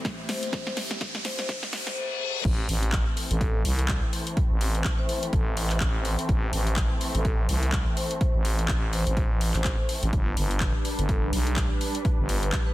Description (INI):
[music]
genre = bass house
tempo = 125 BPM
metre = 4/4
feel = swing 58% on 16ths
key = A minor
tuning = A4 = 440 Hz
[part]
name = rich symphonic string section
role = sustained chords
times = 0.0-12.7 s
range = A2 to B4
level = -35 LUFS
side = equal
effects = sidechain pumping, low-pass filter
[part]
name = electronic kick drum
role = drums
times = 0.0-12.6 s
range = none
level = -27 LUFS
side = equal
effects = none
[part]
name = house drum kit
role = drums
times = 0.0-12.6 s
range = crash cymbal, handclaps, hi-hat, snare drum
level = -32 LUFS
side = left 1 dB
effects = none
[part]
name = riser and reverse cymbal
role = sound effects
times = 0.0-2.4 s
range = none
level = -33 LUFS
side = left 3 dB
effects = none
[part]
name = warbly tape-like pad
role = texture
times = 0.0-2.0, 10.1-12.7 s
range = A3 to E5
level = -38 LUFS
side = equal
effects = chorus, built-in reverb, sidechain pumping
[part]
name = vibraphone with soft mallets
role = melody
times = 0.3-12.7 s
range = A4 to C5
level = -36 LUFS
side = left 2 dB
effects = digital delay
[part]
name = growling FM bass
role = bass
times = 2.4-12.5 s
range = G1 to C2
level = -26 LUFS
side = equal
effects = tube saturation, sidechain pumping
[sound]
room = digital ambience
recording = dense, heavily limited modern master, high-pass filter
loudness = -24 LUFS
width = side -16 dB against mid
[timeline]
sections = 0.0-2.4 A section; 2.4-12.7 B section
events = build-up 0.0-2.4; drum fill 0.0-2.0; riser 0.0-2.0; filter sweep 0.0-2.4; reverse cymbal 1.5-2.4; drop 2.4-12.7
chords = 0.0 Am; 10.1 G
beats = 0.05 | 0.53 1.01 1.49 1.97 | 2.45 2.93 3.41 3.89 | 4.37 4.85 5.33 5.81 | 6.29 6.77 7.25 7.73 | 8.21 8.69 9.17 9.65 | 10.13 10.61 11.09 11.57 | 12.05 12.53